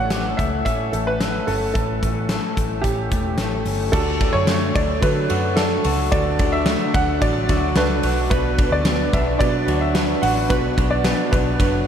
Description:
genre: jangly indie pop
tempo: 110 BPM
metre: 4/4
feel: straight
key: D major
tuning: A4 = 441 Hz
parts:
  - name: warm upright piano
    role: melody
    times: 0.0-11.9 s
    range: G4 to F#5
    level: -24 LUFS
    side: right 1 dB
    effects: ping-pong delay
  - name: electric guitar through a small old amp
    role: arpeggios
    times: 0.0-11.9 s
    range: A2 to A4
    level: -25 LUFS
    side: left 3 dB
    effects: ping-pong delay
  - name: vintage muted picked electric bass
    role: bass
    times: 0.0-11.9 s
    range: E1 to D3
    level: -24 LUFS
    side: equal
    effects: none
  - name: big rock drum kit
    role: drums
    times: 0.1-11.7 s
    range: crash cymbal, hi-hat, kick drum, ride cymbal, snare drum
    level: -22 LUFS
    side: equal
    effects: none
  - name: warm analog keys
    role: accompaniment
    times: 3.9-11.9 s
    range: D4 to B4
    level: -26 LUFS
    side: right 6 dB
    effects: chorus
room: moderate huge ambient reverb, RT60 8.9 s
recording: dreamy mix soaked in reverb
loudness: -17 LUFS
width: side -8 dB against mid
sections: 0.0-3.9 A section; 3.9-11.9 B section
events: none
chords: 0.0 A7; 3.9 D; 8.3 Bm

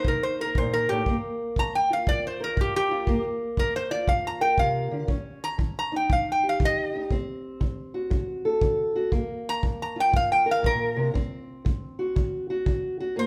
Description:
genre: acoustic country blues, solo or duo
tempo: 119 BPM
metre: 4/4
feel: swing 65% on 8ths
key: G minor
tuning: A4 = 440 Hz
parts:
  - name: metal-body resonator slide guitar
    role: melody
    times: 0.0-13.3 s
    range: G4 to Bb5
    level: -27 LUFS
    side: equal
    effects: none
  - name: fingerpicked steel-string acoustic guitar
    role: accompaniment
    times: 0.0-13.3 s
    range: G2 to Bb4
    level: -31 LUFS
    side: equal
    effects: none
  - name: kick drum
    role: drums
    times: 0.0-12.8 s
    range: none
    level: -29 LUFS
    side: equal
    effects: none
room: moderate large studio reverb, RT60 1.2 s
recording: band playing live in one room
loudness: -26 LUFS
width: mono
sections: 0.0-13.2 A section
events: resonator guitar played with a steel bar solo 0.0-13.3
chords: 0.0 Cm7; 1.1 Gm7; 5.1 Eb7; 7.1 D7; 9.1 Gm7; 11.1 D7

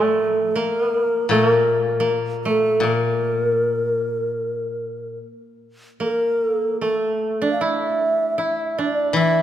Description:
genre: japanese traditional, Japanese chamber music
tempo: 76 BPM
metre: 4/4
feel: rubato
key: unclear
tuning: A4 = 438 Hz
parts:
  - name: mellow hollow long shakuhachi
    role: melody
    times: 0.0-9.4 s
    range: A4 to F5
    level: -21 LUFS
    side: equal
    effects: none
  - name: koto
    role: second line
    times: 0.0-9.4 s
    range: A3 to E4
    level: -24 LUFS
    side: right 2 dB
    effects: none
  - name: koto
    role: accompaniment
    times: 0.0-9.4 s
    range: A2 to E3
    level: -24 LUFS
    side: left 5 dB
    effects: none
room: moderate church reverb, RT60 2.8 s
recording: none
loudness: -18 LUFS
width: side -11 dB against mid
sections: 0.0-9.4 A section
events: none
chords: none

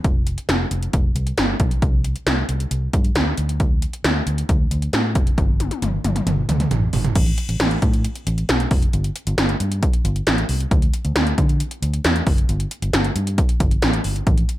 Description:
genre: synth-pop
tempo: 135 BPM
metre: 4/4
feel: straight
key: unclear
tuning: A4 = 440 Hz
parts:
  - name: vintage muted fingered electric bass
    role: bass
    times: 0.0-14.4 s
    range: F1 to D3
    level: -22 LUFS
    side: equal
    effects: none
  - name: 80s electronic pad drums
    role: drums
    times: 0.0-14.6 s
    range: crash cymbal, hi-hat, kick drum, snare drum, toms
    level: -19 LUFS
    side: equal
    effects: gated reverb on snare and toms
room: little or no reverb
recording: none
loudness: -17 LUFS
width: side -15 dB against mid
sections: 0.0-7.2 A section; 7.2-14.6 B section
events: drum fill 5.4-7.2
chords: none

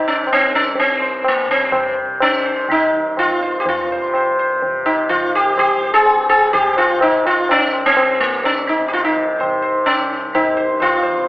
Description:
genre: indian classical, Hindustani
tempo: 125 BPM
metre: 4/4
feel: straight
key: C raga bhairavi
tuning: A4 = 440 Hz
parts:
  - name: sitar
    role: melody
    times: 0.0-11.3 s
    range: Bb3 to C5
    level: -15 LUFS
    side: equal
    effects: none
  - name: tanpura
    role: drone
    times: 0.0-11.3 s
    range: C2 to C3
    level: -25 LUFS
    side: equal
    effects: none
  - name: tabla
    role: percussion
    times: 0.3-11.2 s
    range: none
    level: -21 LUFS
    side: left 1 dB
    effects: none
room: wet recital hall reverb, RT60 1.5 s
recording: telephone sound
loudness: -14 LUFS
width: side -18 dB against mid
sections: 0.0-11.3 A section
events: speeding up 0.0-11.3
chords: none

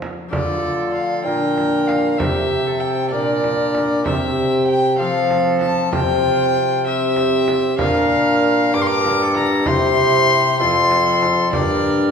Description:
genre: classical, renaissance-style consort dance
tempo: 64 BPM (dotted quarters)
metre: 6/8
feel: straight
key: unclear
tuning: A4 = 441 Hz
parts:
  - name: concert harp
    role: accompaniment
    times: 0.0-12.1 s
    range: F2 to C5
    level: -24 LUFS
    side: left 3 dB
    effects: none
  - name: frame drum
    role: percussion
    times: 0.0-11.8 s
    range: none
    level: -27 LUFS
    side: right 2 dB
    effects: none
  - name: warm violin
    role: melody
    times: 0.3-12.1 s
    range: D5 to D6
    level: -20 LUFS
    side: left 3 dB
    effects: none
  - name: rich viola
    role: second line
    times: 0.3-12.1 s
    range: F4 to Bb4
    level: -23 LUFS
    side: right 4 dB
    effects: none
  - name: warm trombone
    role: accompaniment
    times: 0.3-12.1 s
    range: C4 to F4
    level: -23 LUFS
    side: left 2 dB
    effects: none
  - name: warm bassoon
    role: bass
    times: 0.3-12.1 s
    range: F2 to F3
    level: -22 LUFS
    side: right 2 dB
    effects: none
room: wet recital hall reverb, RT60 1.4 s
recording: recorded in a church or concert hall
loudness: -15 LUFS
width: side -6 dB against mid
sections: 0.3-12.1 A section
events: none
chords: 0.3 Dm; 1.3 Bb; 2.2 C; 3.1 Bb; 4.1 C; 5.0 F; 5.9 Csus4; 6.9 C; 7.8 Bb; 8.7 Gm; 9.7 C; 10.6 F; 11.5 Gm

